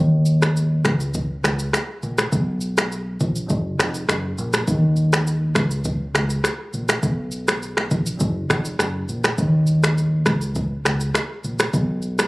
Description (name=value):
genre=afrobeats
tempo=102 BPM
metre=4/4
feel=straight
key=Eb minor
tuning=A4 = 440 Hz
part: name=deep dub fingered electric bass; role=bass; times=0.0-12.3 s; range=F1 to Eb2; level=-21 LUFS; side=equal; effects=none
part: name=afro-pop drum kit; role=drums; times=0.3-12.3 s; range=finger snaps, kick drum, rim click, shaker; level=-21 LUFS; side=equal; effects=none
room=digital ambience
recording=recorded on a phone in the room, club reverb, compression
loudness=-19 LUFS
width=side -22 dB against mid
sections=0.0-12.3 A section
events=none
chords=none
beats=0.56 1.15 1.74 | 2.32 2.91 3.50 4.09 | 4.68 5.26 5.85 6.44 | 7.03 7.62 8.21 8.79 | 9.38 9.97 10.56 11.15 | 11.73